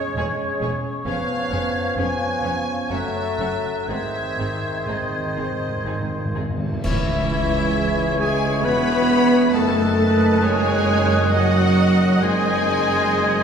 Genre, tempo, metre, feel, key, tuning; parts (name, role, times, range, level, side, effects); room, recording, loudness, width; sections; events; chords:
classical, slow romantic movement for symphony orchestra; 60-68 BPM; 3/4; rubato; C# minor; A4 = 440 Hz
clear studio violin section; melody; 0.0-13.4 s; C#5 to B5; -28 LUFS; left 2 dB
clear clarinet; second line; 0.0-13.4 s; E4 to B4; -29 LUFS; left 2 dB
mellow hollow large flute ensemble; second line; 0.0-13.4 s; F#6 to G#6; -29 LUFS; left 1 dB
warm oboe; second line; 0.0-13.4 s; B#4 to D#5; -31 LUFS; right 1 dB
clear bassoon; accompaniment; 0.0-13.4 s; D#3 to G#3; -29 LUFS; right 2 dB
warm French horn section; sustained chords; 0.0-13.4 s; D#3 to C#4; -24 LUFS; equal
rich studio violin section; second line; 0.2-13.4 s; D#4 to C#5; -31 LUFS; left 4 dB
rich studio viola section; accompaniment; 0.2-13.4 s; G#3 to D#5; -29 LUFS; right 2 dB
rich studio cello section; bass; 0.2-13.4 s; E2 to B3; -26 LUFS; right 2 dB
rich studio double bass section; bass; 0.2-13.4 s; E1 to F#2; -28 LUFS; right 1 dB
cymbal swell, clash cymbals and concert bass drum; percussion; 3.9-8.6 s; -30 LUFS; equal
timpani; percussion; 3.9-6.8 s; G#2; -29 LUFS; equal
mellow tuba; bass; 6.8-13.4 s; E1 to C#2; -27 LUFS; right 2 dB
wet concert hall reverb, RT60 1.9 s; heard from further back in the room; -18 LUFS; side -7 dB against mid
0.0-6.8 A section; 6.8-13.4 B section
timpani fill 3.9-6.8; band accent 6.8-7.7
0.0 C#m/E; 1.1 C#7/E#; 2.9 F#m7; 3.9 G#; 6.8 C#m; 9.5 D#dim/F#; 12.2 G#7/F#